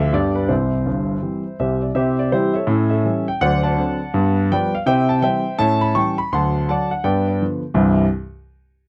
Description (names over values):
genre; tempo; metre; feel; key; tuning
jazz, stride piano; 165 BPM; 4/4; swing 62% on 8ths; C major; A4 = 436 Hz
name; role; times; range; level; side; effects
warm grand piano; solo; 0.0-8.1 s; G1 to C#6; -19 LUFS; equal; none
room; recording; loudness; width
light reverb; dry, close 1970s-style studio recording; -19 LUFS; mono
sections
0.0-2.0 A section; 2.0-7.8 B section; 7.8-8.9 C section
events
none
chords
0.1 G; 0.5 C; 2.7 A7; 3.4 D7; 4.1 G7; 4.9 C; 5.6 A7; 6.3 D7; 7.0 G7; 7.8 C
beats
0.14 | 0.50 0.86 1.23 1.59 | 1.95 2.32 2.68 3.04 | 3.41 3.77 4.13 4.50 | 4.86 5.22 5.59 5.95 | 6.32 6.68 7.04 7.41 | 7.77